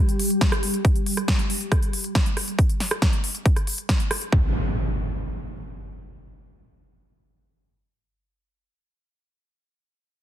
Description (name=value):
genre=psychedelic trance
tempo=138 BPM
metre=4/4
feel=straight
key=unclear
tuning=A4 = 438 Hz
part: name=swarming drone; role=sustained chords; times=0.0-0.9 s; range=G3 to G4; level=-28 LUFS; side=equal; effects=built-in reverb, sidechain pumping
part: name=warbly tape-like pad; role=texture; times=0.1-0.8 s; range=none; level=barely audible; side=none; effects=none
part: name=big-room dance drum kit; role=drums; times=0.1-4.3 s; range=hi-hat, rim click, snare drum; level=-26 LUFS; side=equal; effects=overdrive
part: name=electronic kick drum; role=drums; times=0.4-4.4 s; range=none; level=-20 LUFS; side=equal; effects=overdrive
part: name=impact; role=sound effects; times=4.3-8.7 s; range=none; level=-27 LUFS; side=equal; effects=none
room=digital ambience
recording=dense, heavily limited modern master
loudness=-20 LUFS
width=side -11 dB against mid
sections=0.0-4.3 A section; 4.3-7.8 B section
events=none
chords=0.0 G5; 4.3 N.C.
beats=0.41 | 0.85 1.28 1.72 2.15 | 2.59 3.02 3.46 3.89 | 4.33 4.76 5.19 5.63 | 6.06 6.50 6.93 7.37